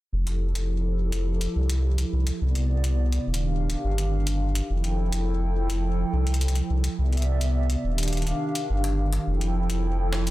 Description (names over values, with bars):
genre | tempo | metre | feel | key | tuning
IDM | 105 BPM | 4/4 | straight | F lydian | A4 = 441 Hz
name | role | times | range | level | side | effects
hollow soft pad | sustained chords | 0.1-10.3 s | C3 to G5 | -29 LUFS | right 1 dB | chorus, vintage 12-bit sampler grit
warm sub bass | bass | 0.1-10.3 s | Eb1 to C2 | -24 LUFS | equal | none
jungle sampler-style drum kit | drums | 0.3-10.3 s | hi-hat, snare drum | -34 LUFS | left 2 dB | studio reverb
room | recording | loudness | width
little or no reverb | dense, heavily limited modern master | -23 LUFS | side -17 dB against mid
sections
0.1-10.3 A section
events
filter sweep on sub bass 0.1-10.3; filter sweep on analog synth pad 0.1-10.3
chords
0.1 Fmaj9; 2.4 Cmaj9; 3.3 Ebmaj9; 4.7 Fmaj9; 7.0 Cmaj9; 7.8 Ebmaj9; 9.3 Fmaj9